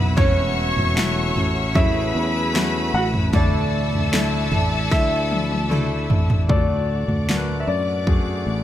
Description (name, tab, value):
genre	pop ballad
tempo	76 BPM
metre	4/4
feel	straight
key	unclear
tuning	A4 = 436 Hz
part	rich studio violin section	second line	0.0-6.5 s	A4 to C#6	-27 LUFS	left 1 dB	tape echo
part	clear concert grand piano	accompaniment	0.0-8.6 s	A2 to B4	-27 LUFS	left 2 dB	none
part	warm symphonic string section	sustained chords	0.0-8.6 s	A3 to E6	-32 LUFS	left 3 dB	none
part	picked steel-string acoustic guitar	arpeggios	0.0-7.0 s	D3 to A4	-33 LUFS	right 4 dB	none
part	sustaining fretless electric bass	bass	0.0-8.6 s	E1 to F#2	-24 LUFS	equal	wide subtle chorus
part	clear baby grand piano	melody	0.2-8.6 s	C#4 to F#5	-26 LUFS	equal	none
part	pop drum kit	drums	0.2-8.3 s	kick drum, snare drum, toms	-21 LUFS	equal	overdrive
room	studio reverb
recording	none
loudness	-18 LUFS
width	side -12 dB against mid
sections	0.0-6.5 A section; 6.5-8.6 B section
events	drum fill 4.9-6.5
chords	0.0 A6/E; 3.3 Dsus2; 6.5 D